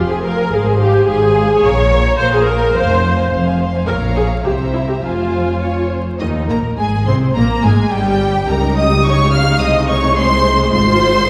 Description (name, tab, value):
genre	quick classical-period movement for string orchestra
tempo	106 BPM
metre	2/4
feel	straight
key	F minor, Ab major from 6.2 s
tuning	A4 = 442 Hz
part	rich symphonic violin section	melody	0.0-11.3 s	Eb5 to F6	-23 LUFS	equal	none
part	warm symphonic violin section	second line	0.0-11.3 s	Eb4 to Bb5	-24 LUFS	equal	none
part	rich symphonic viola section	accompaniment	0.0-11.3 s	Eb3 to Db5	-19 LUFS	equal	none
part	rich symphonic double bass section	bass	0.0-11.3 s	F1 to Eb2	-22 LUFS	equal	none
part	warm symphonic cello section	bass	0.0-11.3 s	Eb2 to Db3	-21 LUFS	equal	none
room	wet scoring stage reverb, RT60 1.7 s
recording	heard from further back in the room, vinyl crackle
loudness	-15 LUFS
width	mono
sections	0.0-6.2 A section; 6.2-11.3 B section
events	none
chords	0.0 Fm; 0.5 Fm/Ab; 1.6 Bbm; 2.8 Fm; 3.9 Bbm; 4.5 C7; 5.0 Fm; 6.2 Ab; 7.4 Gm; 8.5 Eb7/Db; 9.6 Ab/C; 10.7 Fm/Ab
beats	| 0.51 1.07 | 1.63 2.19 | 2.75 3.32 | 3.89 4.46 | 5.04 5.62 | 6.21 6.79 | 7.36 7.92 | 8.48 9.05 | 9.61 10.17 | 10.73 11.29